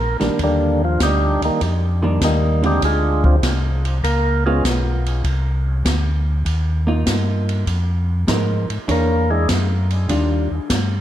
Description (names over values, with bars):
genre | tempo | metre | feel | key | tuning
soul jazz organ trio | 99 BPM | 4/4 | swing 69% on 8ths | unclear | A4 = 441 Hz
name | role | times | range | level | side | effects
percussive tonewheel organ | melody | 0.0-4.6, 8.9-9.5 s | D3 to Bb4 | -21 LUFS | equal | slow rotary speaker, diffuse ambient delay
mellow tonewheel organ | bass | 0.0-11.0 s | Bb1 to Ab2 | -19 LUFS | equal | chorus vibrato
vintage hollow-body jazz guitar | accompaniment | 0.2-10.5 s | D3 to C#5 | -24 LUFS | right 1 dB | wide subtle chorus
open jazz drum kit | drums | 0.2-10.9 s | hi-hat, kick drum, ride cymbal, snare drum | -23 LUFS | equal | none
room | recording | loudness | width
moderate plate reverb, RT60 1.6 s, studio reverb | dreamy mix soaked in reverb | -16 LUFS | side -12 dB against mid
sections
0.4-11.0 A section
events
tonewheel organ solo 0.4-11.0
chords
0.4 Ebmaj7; 2.8 Dm7b5; 4.0 Db7; 5.2 Cm11; 7.7 Fm7; 8.9 E13; 10.1 Ebmaj9